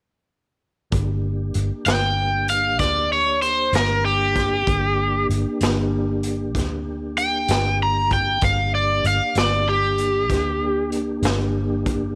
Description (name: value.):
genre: slow blues.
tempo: 64 BPM (dotted quarters).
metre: 12/8.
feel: straight.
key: G minor.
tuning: A4 = 444 Hz.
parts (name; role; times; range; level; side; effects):
mellow tonewheel organ; sustained chords; 0.9-12.1 s; Bb3 to G4; -30 LUFS; equal; slow rotary speaker, chorus vibrato.
vintage muted fingered electric bass; bass; 0.9-12.1 s; G1 to D2; -27 LUFS; equal; none.
raw garage drum kit; drums; 0.9-12.0 s; hi-hat, kick drum, snare drum; -28 LUFS; equal; none.
cranked stack guitar; melody; 1.9-10.9 s; G4 to Bb5; -22 LUFS; equal; overdrive.
room: light reverb, small room ambience.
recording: none.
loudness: -21 LUFS.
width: mono.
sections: 0.9-12.2 A section.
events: none.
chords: 0.9 Gm.